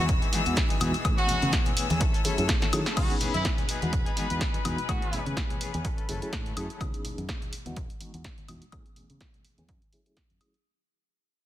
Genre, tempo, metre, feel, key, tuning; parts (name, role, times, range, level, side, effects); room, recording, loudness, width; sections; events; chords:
filtered disco house; 125 BPM; 4/4; swing 56% on 16ths; A4 = 437 Hz
bright horn section; melody; 0.0-5.3 s; E4 to F#4; -33 LUFS; equal; vintage 12-bit sampler grit, sidechain pumping, low-pass filter, ping-pong delay
reed electric piano; accompaniment; 0.0-10.5 s; E3 to G#4; -35 LUFS; right 1 dB; fast tremolo, phaser, sidechain pumping, low-pass filter
clear chamber string section; sustained chords; 0.0-6.8 s; E3 to E6; -35 LUFS; left 4 dB; sidechain pumping, low-pass filter
direct-recorded clean electric guitar; riff; 0.0-6.8 s; E3 to A4; -37 LUFS; left 6 dB; tremolo, sidechain pumping, low-pass filter
fingered electric bass; bass; 0.0-10.4 s; E1 to D#3; -32 LUFS; right 1 dB; sidechain pumping, low-pass filter
electronic kick drum; drums; 0.1-10.3 s; -29 LUFS; equal; studio reverb
punchy analog drum machine; drums; 0.1-10.6 s; crash cymbal, hi-hat, snare drum, woodblock; -33 LUFS; equal; sidechain pumping on hats, studio reverb, sidechain pumping on perc, sidechain pumping on cymbals
maracas and congas; percussion; 0.1-10.6 s; -37 LUFS; left 4 dB; sidechain pumping on perc, low-pass filter on perc
light reverb, digital ambience; dense, heavily limited modern master; -25 LUFS; side -13 dB against mid
0.0-3.0 A section; 3.0-10.6 B section
drop 0.0-3.0; drum fill 2.6-3.0; fade-out 3.0-10.6; filter sweep 3.0-10.6
0.0 Emaj9; 1.0 Amaj9; 2.0 F#m7; 3.0 C#m7; 3.7 Emaj9; 4.9 Amaj9; 5.8 F#m7; 6.8 C#m7; 7.5 Emaj9; 8.7 Amaj9; 9.7 F#m7